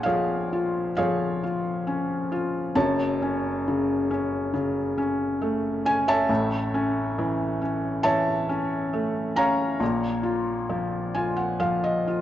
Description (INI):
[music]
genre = classical, lyrical solo piano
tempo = 67 BPM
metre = 4/4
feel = rubato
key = unclear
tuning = A4 = 440 Hz
[part]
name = felt-muted upright piano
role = solo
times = 0.0-12.2 s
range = Gb1 to Bb5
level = -23 LUFS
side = left 1 dB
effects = none
[sound]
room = light reverb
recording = dark, warm production, nothing above 7.8 kHz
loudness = -23 LUFS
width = side -12 dB against mid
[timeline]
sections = 0.0-12.2 A section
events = felt piano fill 10.7-12.2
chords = 0.0 Bbm7; 2.8 Gbm; 6.3 A; 9.8 Bbm